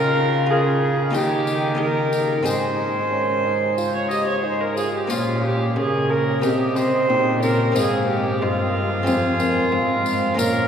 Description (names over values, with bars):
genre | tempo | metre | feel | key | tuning
classical, renaissance-style consort dance | 91 BPM | 4/4 | straight | unclear | A4 = 438 Hz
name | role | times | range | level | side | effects
warm cornet | melody | 0.0-10.7 s | Db5 to Ab5 | -30 LUFS | left 3 dB | none
rich viola | second line | 0.0-10.7 s | F4 to Eb5 | -21 LUFS | right 2 dB | none
buff-stop harpsichord | accompaniment | 0.0-10.7 s | F2 to Ab4 | -29 LUFS | left 1 dB | none
dark bassoon | accompaniment | 0.0-10.7 s | Bb3 to G4 | -27 LUFS | left 1 dB | none
rich cello | bass | 0.0-10.7 s | F2 to Eb3 | -24 LUFS | equal | none
tambourine | percussion | 1.1-10.7 s | none | -37 LUFS | left 5 dB | none
room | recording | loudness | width
wet cathedral reverb, RT60 6.8 s | heard from further back in the room | -18 LUFS | side -8 dB against mid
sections
0.0-10.7 A section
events
none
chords
0.0 Db; 1.1 Eb; 2.5 Ab; 5.1 Bbm; 6.4 Cm; 7.8 Ab; 9.1 Fm